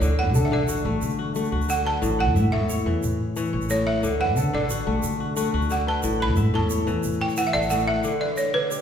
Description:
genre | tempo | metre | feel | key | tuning
west african traditional, West African string and xylophone music | 120 BPM (dotted quarters) | 12/8 | straight | D major | A4 = 441 Hz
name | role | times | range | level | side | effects
balafon | melody | 0.0-8.8 s | B4 to B5 | -26 LUFS | right 3 dB | none
kora | arpeggios | 0.0-8.8 s | A2 to F#5 | -25 LUFS | left 3 dB | none
upright bass | bass | 0.0-8.0 s | A1 to D3 | -25 LUFS | equal | none
egg shaker | percussion | 0.0-8.8 s | none | -38 LUFS | right 7 dB | none
room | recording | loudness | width
wet recital hall reverb, RT60 1.7 s | heard from further back in the room | -21 LUFS | side -8 dB against mid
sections
0.0-8.0 A section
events
balafon solo 0.0-8.0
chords
0.0 D; 2.0 A; 4.0 D; 6.0 A; 8.0 D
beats
| 0.01 0.52 1.02 1.52 | 2.02 2.52 3.03 3.53 | 4.03 4.53 5.03 5.53 | 6.03 6.54 7.04 7.54 | 8.04 8.54

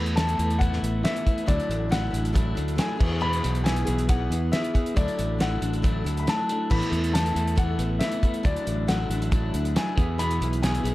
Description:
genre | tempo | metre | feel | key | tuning
folk rock and heartland rock | 138 BPM | 4/4 | straight | unclear | A4 = 440 Hz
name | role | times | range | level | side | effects
warm concert grand piano | melody | 0.0-10.9 s | D5 to B5 | -31 LUFS | left 3 dB | none
picked steel-string acoustic guitar | accompaniment | 0.0-10.9 s | E2 to G#4 | -33 LUFS | left 4 dB | none
mellow tonewheel organ | sustained chords | 0.0-10.9 s | E3 to F#5 | -40 LUFS | right 1 dB | none
electric guitar through a small old amp | riff | 0.0-10.9 s | E2 to G#4 | -30 LUFS | right 1 dB | spring reverb
fingered electric bass | bass | 0.0-10.9 s | A1 to E2 | -27 LUFS | equal | none
cloth-damped thuddy drum kit | drums | 0.1-10.9 s | crash cymbal, hi-hat, kick drum, snare drum | -26 LUFS | equal | none
room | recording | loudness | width
light reverb | none | -22 LUFS | side -17 dB against mid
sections
0.0-10.9 A section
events
none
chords
0.0 Asus2; 1.5 Dadd9; 3.0 E; 5.0 Dadd9; 6.7 Asus2; 8.4 Dadd9; 10.0 E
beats
0.17 0.60 1.04 | 1.48 1.91 2.35 2.78 | 3.22 3.65 4.09 4.53 | 4.96 5.40 5.83 6.27 | 6.70 7.14 7.58 8.01 | 8.45 8.88 9.32 9.76 | 10.19 10.63

